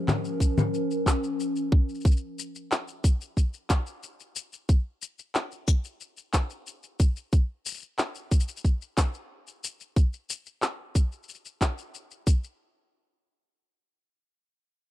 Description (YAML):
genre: folktronica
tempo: 91 BPM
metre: 4/4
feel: straight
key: unclear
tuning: A4 = 441 Hz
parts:
  - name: warbly tape-like pad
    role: sustained chords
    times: 0.0-2.0 s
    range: F3 to Bb4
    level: -30 LUFS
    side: equal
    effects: chorus, built-in reverb
  - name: electronic handclaps, congas and shaker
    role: drums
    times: 0.1-12.6 s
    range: none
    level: -29 LUFS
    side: left 2 dB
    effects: none
  - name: electronic kick drum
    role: drums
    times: 0.4-12.4 s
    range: none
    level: -22 LUFS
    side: equal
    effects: none
room: little or no reverb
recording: dry, close 1970s-style studio recording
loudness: -25 LUFS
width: side -14 dB against mid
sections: 0.0-12.6 A section; 12.6-14.9 B section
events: none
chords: 0.0 Db6/F; 2.0 N.C.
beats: 0.07 0.73 1.39 | 2.05 2.71 3.37 4.03 | 4.69 5.34 6.00 6.66 | 7.32 7.98 8.64 9.30 | 9.96 10.62 11.28 11.94